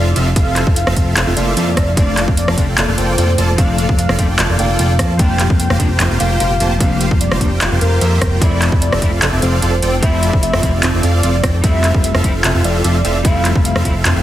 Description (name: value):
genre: future bass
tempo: 149 BPM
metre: 4/4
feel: half-time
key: F major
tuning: A4 = 436 Hz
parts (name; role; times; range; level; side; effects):
- warm velvety synth lead; melody; 0.0-13.9 s; Bb4 to G5; -23 LUFS; equal; chorus, sidechain pumping, dub echo
- ethereal airy pad; sustained chords; 0.1-14.2 s; Bb2 to F4; -28 LUFS; right 2 dB; none
- supersaw chords; riff; 0.0-14.2 s; Bb3 to A5; -20 LUFS; right 1 dB; lush chorus, sidechain pumping
- fat analog bass; bass; 0.0-14.2 s; F1 to F2; -16 LUFS; equal; sidechain pumping
- big-room dance drum kit; drums; 0.2-14.1 s; handclaps, hi-hat, rim click; -19 LUFS; equal; overdrive
- electronic kick drum; drums; 0.4-13.9 s; none; -15 LUFS; equal; none
- swell; sound effects; 1.3-2.0 s; none; -26 LUFS; right 7 dB; none
- clean electric guitar; accompaniment; 2.0-13.9 s; F3 to E4; -23 LUFS; left 5 dB; analog chorus, sidechain pumping
room: light reverb, digital ambience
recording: heavily compressed radio sound, multiband compression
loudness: -12 LUFS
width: side -13 dB against mid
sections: 0.0-14.2 A section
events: swell 1.3-2.0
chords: 0.0 Fmaj7; 2.0 Bbmaj7/F; 5.2 C7sus4/F; 8.4 Dm9/F; 11.6 Fmaj7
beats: | 0.36 0.77 1.17 1.57 | 1.97 2.38 2.78 3.18 | 3.58 3.99 4.39 4.79 | 5.19 5.60 6.00 6.40 | 6.80 7.21 7.61 8.01 | 8.42 8.82 9.22 9.62 | 10.03 10.43 10.83 11.23 | 11.64 12.04 12.44 12.85 | 13.25 13.65 14.05